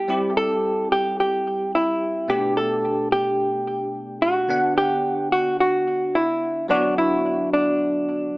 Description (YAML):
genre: pop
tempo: 109 BPM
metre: 4/4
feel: straight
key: unclear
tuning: A4 = 440 Hz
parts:
  - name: hollow-body jazz guitar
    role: melody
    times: 0.0-8.4 s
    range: D4 to A4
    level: -20 LUFS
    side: equal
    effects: none
  - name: bell-like tine electric piano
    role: accompaniment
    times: 0.0-8.4 s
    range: B2 to F#5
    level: -26 LUFS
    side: equal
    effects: ensemble chorus
room: moderate recital hall reverb, RT60 1.4 s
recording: small speaker sound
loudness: -19 LUFS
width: side -22 dB against mid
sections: 0.0-8.4 A section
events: none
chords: 0.1 C; 2.3 Gadd9/B; 4.5 Bm